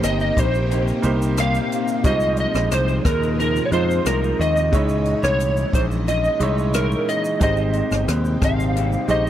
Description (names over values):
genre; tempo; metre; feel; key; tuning
indie pop, bedroom pop; 90 BPM; 4/4; straight; unclear; A4 = 441 Hz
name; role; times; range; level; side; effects
electric slide guitar; melody; 0.0-9.3 s; Bb4 to F5; -22 LUFS; equal; ensemble chorus, slapback echo
bright upright piano; accompaniment; 0.0-9.3 s; G3 to Db5; -28 LUFS; right 5 dB; cassette tape
electric guitar through a small old amp; accompaniment; 0.0-9.3 s; Ab2 to G4; -26 LUFS; left 2 dB; wide subtle chorus, vibrato effect
string machine, full ensemble; sustained chords; 0.0-9.3 s; Bb2 to Eb5; -30 LUFS; left 1 dB; ensemble chorus
picked electric bass; bass; 0.0-9.3 s; G1 to F2; -22 LUFS; equal; none
compact cocktail drum kit; drums; 0.0-9.3 s; hi-hat, kick drum, rim click, shaker; -23 LUFS; equal; none
room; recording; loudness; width
little or no reverb; dry, close 1970s-style studio recording; -17 LUFS; side -11 dB against mid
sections
0.0-9.3 A section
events
none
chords
0.0 Cm7; 2.0 Fm7; 4.7 Dbmadd9; 7.4 Abmaj7